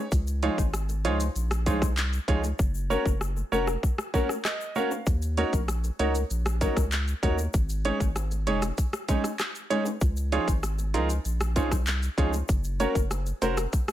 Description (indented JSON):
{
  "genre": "dancehall",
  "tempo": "97 BPM",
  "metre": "4/4",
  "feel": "straight",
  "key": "Db major",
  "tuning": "A4 = 440 Hz",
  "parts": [
    { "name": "clear concert grand piano", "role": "accompaniment", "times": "0.0-13.5 s", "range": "Db4 to F5", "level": "-30 LUFS", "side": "right 5 dB", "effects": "none" },
    { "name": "saturated sub bass", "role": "bass", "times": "0.1-13.7 s", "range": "F1 to Eb2", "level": "-28 LUFS", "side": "equal", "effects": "none" },
    { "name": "island pop drum kit", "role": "drums", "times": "0.1-13.9 s", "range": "handclaps, hi-hat, kick drum, rim click, shaker", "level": "-27 LUFS", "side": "equal", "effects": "none" },
    { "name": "egg shaker and timbales", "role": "percussion", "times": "0.1-13.9 s", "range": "none", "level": "-42 LUFS", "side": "left 9 dB", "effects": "none" },
    { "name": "nylon-string guitar", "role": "arpeggios", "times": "0.4-13.6 s", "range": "F3 to Bb4", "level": "-31 LUFS", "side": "left 3 dB", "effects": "none" }
  ],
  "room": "studio ambience",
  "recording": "none",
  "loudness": "-24 LUFS",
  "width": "side -12 dB against mid",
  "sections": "0.0-13.9 A section",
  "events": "hi-hats muted 2.6-5.1; grand piano fill 4.1-5.1",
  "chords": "0.1 Dbadd9; 2.6 Gb; 5.1 Ebm7; 7.5 Absus4; 10.0 Dbadd9; 12.5 Gb",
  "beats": "| 0.12 0.74 1.35 1.97 | 2.59 3.21 3.83 4.45 | 5.07 5.68 6.30 6.92 | 7.54 8.16 8.78 9.40 | 10.02 10.63 11.25 11.87 | 12.49 13.11 13.73"
}